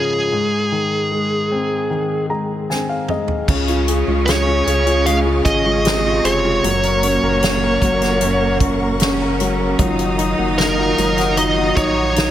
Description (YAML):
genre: pop ballad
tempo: 76 BPM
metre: 4/4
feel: straight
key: Db major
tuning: A4 = 440 Hz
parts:
  - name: bluesy overdriven lead guitar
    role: melody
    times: 0.0-12.3 s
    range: Ab4 to F5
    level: -19 LUFS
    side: right 1 dB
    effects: distortion
  - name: clear grand piano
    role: accompaniment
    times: 0.0-12.3 s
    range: Db2 to Bb5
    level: -20 LUFS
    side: left 4 dB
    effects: none
  - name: unplugged drum kit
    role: drums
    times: 2.7-12.3 s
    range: crash cymbal, hi-hat, kick drum, snare drum, toms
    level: -22 LUFS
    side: equal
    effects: none
  - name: rich studio cello section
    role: second line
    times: 3.5-12.3 s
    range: Bb2 to Eb4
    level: -23 LUFS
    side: right 2 dB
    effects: none
  - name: warm studio string section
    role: sustained chords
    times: 3.5-12.3 s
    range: Gb3 to Eb6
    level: -27 LUFS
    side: equal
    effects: none
  - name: fingerpicked steel-string acoustic guitar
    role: arpeggios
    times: 3.5-12.3 s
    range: Gb2 to Gb4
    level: -26 LUFS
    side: right 6 dB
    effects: none
  - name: warm sub bass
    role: bass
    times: 3.5-12.3 s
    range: F1 to Db2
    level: -23 LUFS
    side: right 1 dB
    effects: none
room: light reverb, small room ambience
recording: none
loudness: -15 LUFS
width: side -11 dB against mid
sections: 0.0-3.5 A section; 3.5-12.3 B section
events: grand piano fill 1.9-3.5; drum fill 2.7-3.5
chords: 0.3 Ab; 3.5 Db; 6.6 Gb; 9.8 Ebmadd9/Gb